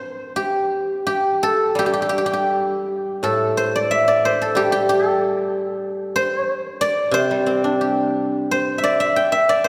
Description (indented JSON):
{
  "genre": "chinese traditional, Chinese solo plucked strings",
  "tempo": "78-95 BPM",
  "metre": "2/4",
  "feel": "rubato",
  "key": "G zhi mode",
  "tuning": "A4 = 438 Hz",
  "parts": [
    { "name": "guzheng", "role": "solo", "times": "0.0-9.7 s", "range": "A2 to G5", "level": "-20 LUFS", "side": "equal", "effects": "none" }
  ],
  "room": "wet church reverb, RT60 3.2 s",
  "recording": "recorded in a church or concert hall",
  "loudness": "-20 LUFS",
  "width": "mono",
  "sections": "0.0-3.2 A section; 3.2-9.7 B section",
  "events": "none",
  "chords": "none"
}